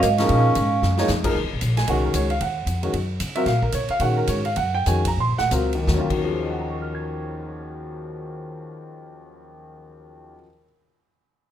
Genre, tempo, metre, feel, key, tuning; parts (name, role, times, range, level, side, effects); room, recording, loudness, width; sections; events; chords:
modal jazz; 159-228 BPM; 4/4; swing 60% on 8ths; Eb dorian; A4 = 440 Hz
vibraphone with medium mallets; melody; 0.0-1.0 s; Eb5; -23 LUFS; right 9 dB
growling tenor saxophone; second line; 0.0-1.0 s; Bb3 to Db4; -25 LUFS; left 4 dB
clear grand piano; accompaniment; 0.0-10.7 s; Eb2 to Ab6; -25 LUFS; equal
upright bass; bass; 0.0-10.3 s; Eb1 to Db3; -24 LUFS; equal
swinging big-band drum kit; drums; 0.0-6.2 s; crash cymbal, hi-hat, kick drum, ride cymbal, snare drum; -30 LUFS; equal
light reverb; minimal, uncompressed stereo recording; -20 LUFS; side -10 dB against mid
0.0-1.4 A section; 1.4-5.9 B section; 5.9-8.9 C section
drum fill 0.8; slowing down 3.5-5.9
0.0 Ebm9